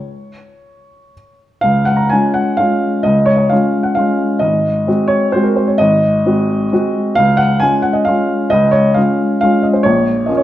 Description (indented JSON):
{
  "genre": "classical, piano waltz",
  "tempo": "112-144 BPM",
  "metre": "3/4",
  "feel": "rubato",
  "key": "Db major",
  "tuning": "A4 = 443 Hz",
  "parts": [
    { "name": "warm upright piano", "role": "solo", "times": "0.0-10.4 s", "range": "Ab1 to Bb5", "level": "-11 LUFS", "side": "equal", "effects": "none" }
  ],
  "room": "wet recital hall reverb, RT60 1.4 s",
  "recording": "none",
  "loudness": "-11 LUFS",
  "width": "side -13 dB against mid",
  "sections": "0.0-1.6 A section; 1.6-10.4 A section",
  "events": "none",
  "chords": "0.0 N.C.; 1.6 Db; 4.4 Ab7; 7.2 Db; 9.9 Bbm"
}